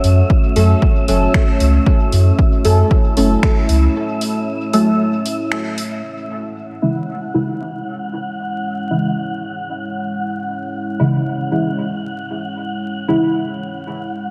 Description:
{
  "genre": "dub techno",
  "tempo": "115 BPM",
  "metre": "4/4",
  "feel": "straight",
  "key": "C# minor",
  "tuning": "A4 = 435 Hz",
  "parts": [
    { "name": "deep dark ambient pad", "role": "sustained chords", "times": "0.0-14.3 s", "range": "G#3 to C#5", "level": "-26 LUFS", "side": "equal", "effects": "chorus, built-in reverb, sidechain pumping" },
    { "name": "warm sub bass", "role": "bass", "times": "0.0-3.9 s", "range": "F#1 to F#2", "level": "-15 LUFS", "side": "equal", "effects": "tube saturation, sidechain pumping" },
    { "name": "punchy analog drum machine", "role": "drums", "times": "0.0-5.9 s", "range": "finger snaps, hi-hat", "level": "-28 LUFS", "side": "equal", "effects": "overdrive" },
    { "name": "wind-like tuned noise texture", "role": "texture", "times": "0.0-14.3 s", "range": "E5 to F#5", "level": "-30 LUFS", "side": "equal", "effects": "built-in reverb, lush chorus, sidechain pumping" },
    { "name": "electronic kick drum", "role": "drums", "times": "0.3-3.5 s", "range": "none", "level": "-17 LUFS", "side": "equal", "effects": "overdrive" },
    { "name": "deep mellow chord stab", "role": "stabs", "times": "0.6-13.2 s", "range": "C#3 to A4", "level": "-22 LUFS", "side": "equal", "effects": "chorus, phaser, sidechain pumping, dub echo" }
  ],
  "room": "wet lush hall reverb, RT60 2.3 s",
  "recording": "dreamy mix soaked in reverb, vinyl crackle",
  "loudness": "-17 LUFS",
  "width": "mono",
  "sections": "0.0-6.0 A section; 6.0-14.3 B section",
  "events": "break 4.0-6.0",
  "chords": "0.0 F#m; 6.0 C#m",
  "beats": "0.30 0.82 1.34 | 1.86 2.39 2.91 3.43 | 3.95 4.47 5.00 5.52 | 6.04 6.56 7.08 7.60 | 8.13 8.65 9.17 9.69 | 10.21 10.73 11.26 11.78 | 12.30 12.82 13.34 13.87"
}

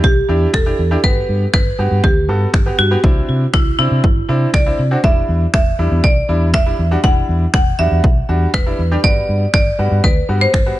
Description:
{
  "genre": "dance-pop",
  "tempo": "120 BPM",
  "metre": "4/4",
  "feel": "straight",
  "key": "E minor",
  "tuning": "A4 = 444 Hz",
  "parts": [
    { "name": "marimba with hard mallets", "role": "melody", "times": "0.0-10.8 s", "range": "E4 to F#5", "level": "-19 LUFS", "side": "right 1 dB", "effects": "none" },
    { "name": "bright grand piano", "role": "accompaniment", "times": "0.0-10.8 s", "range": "G3 to A4", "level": "-22 LUFS", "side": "right 1 dB", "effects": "sidechain pumping" },
    { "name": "vintage muted fingered electric bass", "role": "bass", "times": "0.0-10.7 s", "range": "E1 to C3", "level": "-17 LUFS", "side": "equal", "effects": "sidechain pumping" },
    { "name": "punchy analog drum machine", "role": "drums", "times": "0.0-10.7 s", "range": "finger snaps, kick drum", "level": "-15 LUFS", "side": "equal", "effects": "overdrive" }
  ],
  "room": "studio ambience",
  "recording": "nothing above 10.9 kHz",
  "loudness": "-12 LUFS",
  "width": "side -15 dB against mid",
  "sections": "0.0-10.8 A section",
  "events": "none",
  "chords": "0.0 Em7; 1.0 Gmaj7; 3.0 Cadd9; 5.0 Em7; 9.0 Gmaj7",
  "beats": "0.04 0.54 | 1.04 1.54 2.04 2.54 | 3.04 3.54 4.04 4.54 | 5.04 5.54 6.04 6.54 | 7.04 7.54 8.04 8.54 | 9.04 9.54 10.04 10.54"
}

